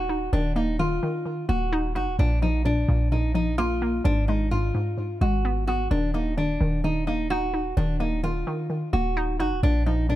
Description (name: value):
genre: hip hop, trap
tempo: 129 BPM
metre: 4/4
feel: half-time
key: Eb harmonic minor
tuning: A4 = 440 Hz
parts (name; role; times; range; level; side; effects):
- nylon-string guitar; melody; 0.0-10.2 s; D4 to Gb4; -27 LUFS; right 1 dB; tape echo
- hollow square pluck; accompaniment; 0.0-10.2 s; Ab2 to Eb4; -28 LUFS; left 1 dB; chorus
- clean 808-style bass; bass; 0.0-10.2 s; Eb1 to Bb1; -25 LUFS; equal; none
room: small room ambience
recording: none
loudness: -22 LUFS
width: side -14 dB against mid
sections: 0.0-10.2 A section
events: none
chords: 0.0 Ebm; 2.2 Bb; 4.0 Abm; 5.9 Ebm; 9.6 Bb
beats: | 0.33 0.79 1.26 1.72 | 2.19 2.65 3.12 3.58 | 4.05 4.51 4.98 5.44 | 5.91 6.37 6.84 7.30 | 7.77 8.23 8.70 9.16 | 9.63 10.10